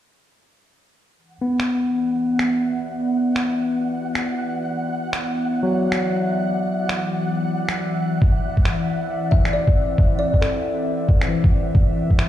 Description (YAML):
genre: future garage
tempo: 136 BPM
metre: 4/4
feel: swing 60% on 16ths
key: unclear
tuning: A4 = 441 Hz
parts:
  - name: warbly tape-like pad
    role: sustained chords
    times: 2.0-12.3 s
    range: E3 to E5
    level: -24 LUFS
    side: equal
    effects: chorus, built-in reverb, phaser, sidechain pumping
  - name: flickering grainy texture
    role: texture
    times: 1.7-12.3 s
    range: F#5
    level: -32 LUFS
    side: right 2 dB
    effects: built-in reverb
  - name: barky tine electric piano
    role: accompaniment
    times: 1.4-8.2, 11.3-12.3 s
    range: E3 to B3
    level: -24 LUFS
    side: left 1 dB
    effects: medium stereo tremolo, sidechain pumping, analog delay
  - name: electronic finger snaps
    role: drums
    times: 1.6-12.3 s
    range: none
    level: -27 LUFS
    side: equal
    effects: none
  - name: electronic kick drum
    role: drums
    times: 8.2-12.2 s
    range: none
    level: -17 LUFS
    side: equal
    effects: none
  - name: kalimba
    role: melody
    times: 9.3-10.9 s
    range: A4 to E5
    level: -26 LUFS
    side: left 2 dB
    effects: analog delay
room: moderate lush hall reverb, RT60 1.9 s, digital ambience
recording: played on a big sound system in a bare room, cassette tape, stone room reverb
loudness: -18 LUFS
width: side -12 dB against mid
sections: 1.2-12.3 A section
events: none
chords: 1.2 E5; 8.2 Cadd9/E